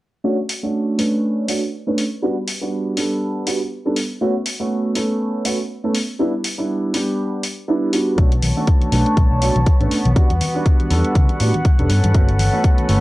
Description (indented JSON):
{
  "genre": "filtered disco house",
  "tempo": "121 BPM",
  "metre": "4/4",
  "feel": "swing 57% on 16ths",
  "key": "B minor",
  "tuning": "A4 = 440 Hz",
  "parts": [
    { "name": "dark baby grand piano", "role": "accompaniment", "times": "0.2-13.0 s", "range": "G3 to B4", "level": "-20 LUFS", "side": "right 1 dB", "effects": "phaser, vintage 12-bit sampler grit, sidechain pumping, low-pass filter" },
    { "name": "electronic hi-hat", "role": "drums", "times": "0.5-13.0 s", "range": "none", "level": "-26 LUFS", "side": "left 1 dB", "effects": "sidechain pumping on hats" },
    { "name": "warm studio violin section", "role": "sustained chords", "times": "8.2-13.0 s", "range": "B3 to A5", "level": "-24 LUFS", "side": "left 1 dB", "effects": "sidechain pumping, low-pass filter" },
    { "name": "vintage muted fingered electric bass", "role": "bass", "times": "8.2-13.0 s", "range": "E1 to C#3", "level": "-18 LUFS", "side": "equal", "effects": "tube saturation, sidechain pumping, low-pass filter" },
    { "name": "electronic kick drum", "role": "drums", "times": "8.2-12.8 s", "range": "none", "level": "-14 LUFS", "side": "equal", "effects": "none" },
    { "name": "tambourine and congas", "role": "percussion", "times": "8.2-13.0 s", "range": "none", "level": "-28 LUFS", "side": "left 2 dB", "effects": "none" }
  ],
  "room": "light reverb, small room ambience",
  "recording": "dry, gritty hardware recording, transformer saturation, cassette tape",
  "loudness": "-16 LUFS",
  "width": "side -18 dB against mid",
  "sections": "0.2-13.0 A section",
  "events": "filter sweep 0.2-13.0",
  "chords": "0.2 Bm9; 2.2 Gmaj9; 4.0 A69; 5.9 G6; 8.2 Bm9; 10.2 Em9; 11.9 Gmaj9#11"
}